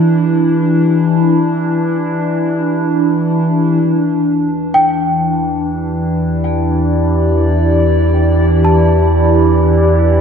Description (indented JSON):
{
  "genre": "ambient",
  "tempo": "free time",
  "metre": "none",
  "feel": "none",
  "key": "E minor",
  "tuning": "A4 = 440 Hz",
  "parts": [
    { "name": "warbly tape-like pad", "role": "sustained chords", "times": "0.0-10.2 s", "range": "E3 to D5", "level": "-12 LUFS", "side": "equal", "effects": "chorus, built-in reverb, phaser" },
    { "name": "warm sub bass", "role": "bass", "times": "3.8-10.2 s", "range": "E2", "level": "-15 LUFS", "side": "equal", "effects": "none" },
    { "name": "worn celesta", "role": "arpeggios", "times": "4.7-10.2 s", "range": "G5 to A5", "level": "-19 LUFS", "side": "equal", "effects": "tape echo" }
  ],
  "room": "wet lush hall reverb, RT60 2.8 s",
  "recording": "dark, warm production",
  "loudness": "-11 LUFS",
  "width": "side -7 dB against mid",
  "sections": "0.0-3.8 A section; 3.8-10.2 B section",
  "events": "none",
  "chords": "0.0 Em7",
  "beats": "free time"
}